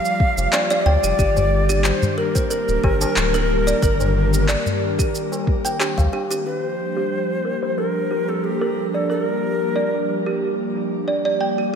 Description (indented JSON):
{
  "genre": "organic downtempo",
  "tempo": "91 BPM",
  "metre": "4/4",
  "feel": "swing 54% on 16ths",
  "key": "G minor",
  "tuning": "A4 = 440 Hz",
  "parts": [
    { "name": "Native American-style cedar flute", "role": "melody", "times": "0.0-10.4 s", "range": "G4 to F5", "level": "-25 LUFS", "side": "left 2 dB", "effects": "analog delay, shimmer reverb" },
    { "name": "airy breathy pad", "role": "sustained chords", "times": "0.0-11.8 s", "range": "Eb3 to G4", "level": "-25 LUFS", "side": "left 1 dB", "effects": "chorus, sidechain pumping, shimmer reverb" },
    { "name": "electronic shaker and handclaps", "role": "drums", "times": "0.1-6.4 s", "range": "none", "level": "-26 LUFS", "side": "right 1 dB", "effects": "small room ambience" },
    { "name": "electronic kick drum", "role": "drums", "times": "0.2-6.1 s", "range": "none", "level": "-20 LUFS", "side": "equal", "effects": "small room ambience" },
    { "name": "round analog bass", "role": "bass", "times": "0.4-6.1 s", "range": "D1 to D2", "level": "-20 LUFS", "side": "equal", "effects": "sidechain pumping" },
    { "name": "tabla", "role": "percussion", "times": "0.4-6.4 s", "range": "none", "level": "-28 LUFS", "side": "left 2 dB", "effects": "none" },
    { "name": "kalimba", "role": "arpeggios", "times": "0.5-11.7 s", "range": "G4 to A5", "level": "-24 LUFS", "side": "right 2 dB", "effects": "low-pass filter, analog delay, shimmer reverb" }
  ],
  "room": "moderate plate reverb, RT60 2.4 s",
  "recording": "dreamy mix soaked in reverb",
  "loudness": "-18 LUFS",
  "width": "side -7 dB against mid",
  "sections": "0.0-6.5 A section; 6.5-11.8 B section",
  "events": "filter sweep on kalimba 6.5-11.8",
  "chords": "0.0 Gm7; 1.2 Ebmaj7; 6.5 Gm7",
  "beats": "0.53 | 1.19 1.85 2.51 3.17 | 3.83 4.48 5.14 5.80 | 6.46 7.12 7.78 8.44 | 9.10 9.76 10.42 11.08 | 11.74"
}